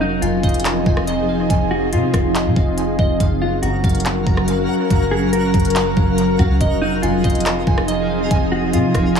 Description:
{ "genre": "hip hop, atmospheric cloud-rap", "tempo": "141 BPM", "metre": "4/4", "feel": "half-time", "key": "F phrygian", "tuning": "A4 = 440 Hz", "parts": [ { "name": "mellow electric guitar", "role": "melody", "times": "0.0-9.2 s", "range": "Eb4 to Bb4", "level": "-24 LUFS", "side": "left 2 dB", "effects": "dub echo" }, { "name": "ethereal airy pad", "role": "sustained chords", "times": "0.0-9.2 s", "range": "F3 to Bb4", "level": "-19 LUFS", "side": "left 1 dB", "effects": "ensemble chorus, built-in reverb, sidechain pumping" }, { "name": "glassy digital keys", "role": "arpeggios", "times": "0.0-9.2 s", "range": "Eb5 to Bb5", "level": "-26 LUFS", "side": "right 5 dB", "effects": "chorus, dub echo" }, { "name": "soft 808-style bass", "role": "bass", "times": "0.0-9.2 s", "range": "F1 to C3", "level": "-22 LUFS", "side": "equal", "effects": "none" }, { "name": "trap drum kit", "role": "drums", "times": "0.2-9.2 s", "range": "handclaps, hi-hat, kick drum, rim click", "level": "-19 LUFS", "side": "equal", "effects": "overdrive" }, { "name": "twinkling granular texture", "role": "texture", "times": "3.7-9.2 s", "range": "F3 to F5", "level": "-29 LUFS", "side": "left 1 dB", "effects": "built-in reverb" } ], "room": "little or no reverb", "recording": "echo-heavy mix, small room ambience", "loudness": "-15 LUFS", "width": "side -7 dB against mid", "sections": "0.0-9.2 A section", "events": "none", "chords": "0.0 Fm7; 3.2 Gbmaj7; 6.6 Fm7", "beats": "0.22 0.65 1.07 | 1.50 1.93 2.35 2.78 | 3.20 3.63 4.05 4.48 | 4.91 5.33 5.76 6.18 | 6.61 7.03 7.46 7.88 | 8.31 8.73 9.16" }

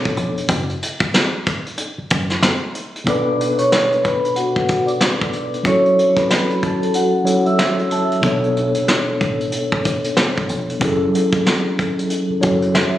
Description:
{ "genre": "hip hop, boom-bap hip-hop", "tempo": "93 BPM", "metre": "4/4", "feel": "swing 61% on 16ths", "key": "unclear", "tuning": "A4 = 440 Hz", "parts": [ { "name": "mellow tine electric piano", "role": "accompaniment", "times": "0.0-13.0 s", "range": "B2 to A5", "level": "-19 LUFS", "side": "equal", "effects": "medium stereo tremolo, cassette tape" }, { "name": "soft brush drum kit", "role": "drums", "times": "0.0-12.9 s", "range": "hi-hat, kick drum, snare drum", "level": "-20 LUFS", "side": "equal", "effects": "none" }, { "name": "deep dub fingered electric bass", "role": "bass", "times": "0.2-2.5, 8.2-12.8 s", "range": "E#1 to B1", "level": "-24 LUFS", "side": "equal", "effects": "none" }, { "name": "vibraphone with soft mallets", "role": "melody", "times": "3.1-8.2 s", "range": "F#4 to E6", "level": "-18 LUFS", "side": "equal", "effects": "ping-pong delay" } ], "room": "small room ambience", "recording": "recorded on a phone in the room, studio reverb, compression", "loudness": "-15 LUFS", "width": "side -13 dB against mid", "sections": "0.0-3.1 A section; 3.1-13.0 B section", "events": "none", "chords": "0.5 N.C.; 3.1 Bm7; 5.7 F#m7; 8.2 Bm7; 10.8 F#m7", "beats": "| 0.49 1.14 1.78 2.42 | 3.07 3.71 4.36 5.01 | 5.65 6.30 6.94 7.59 | 8.23 8.88 9.52 10.17 | 10.81 11.46 12.10 12.75" }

